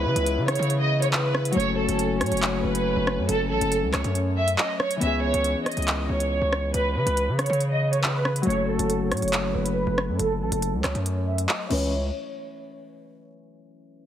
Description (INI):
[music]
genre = hip hop, drill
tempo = 139 BPM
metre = 4/4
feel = half-time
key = C# minor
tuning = A4 = 439 Hz
[part]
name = Celtic harp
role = accompaniment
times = 0.0-11.9 s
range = E3 to B4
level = -30 LUFS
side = left 4 dB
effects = low-pass filter
[part]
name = mellow French horn section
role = sustained chords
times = 0.0-5.0 s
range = C#3 to E4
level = -32 LUFS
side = left 2 dB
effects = none
[part]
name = distorted 808-style bass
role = bass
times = 0.0-12.1 s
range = F#1 to C#3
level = -26 LUFS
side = equal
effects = distortion
[part]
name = dark studio violin section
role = melody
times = 0.1-11.9 s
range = A4 to E5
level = -26 LUFS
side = right 2 dB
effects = low-pass filter, ping-pong delay
[part]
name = drill drum kit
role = drums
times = 0.2-11.8 s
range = crash cymbal, handclaps, hi-hat, rim click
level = -27 LUFS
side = equal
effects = none
[sound]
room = light reverb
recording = heavily compressed radio sound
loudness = -22 LUFS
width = side -10 dB against mid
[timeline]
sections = 0.0-5.0 A section; 5.0-11.9 B section; 11.9-13.6 C section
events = filter sweep 5.0-11.9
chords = 0.0 C#m7; 1.6 F#m; 5.0 C#m7; 8.5 F#m; 11.7 C#m7; 11.9 N.C.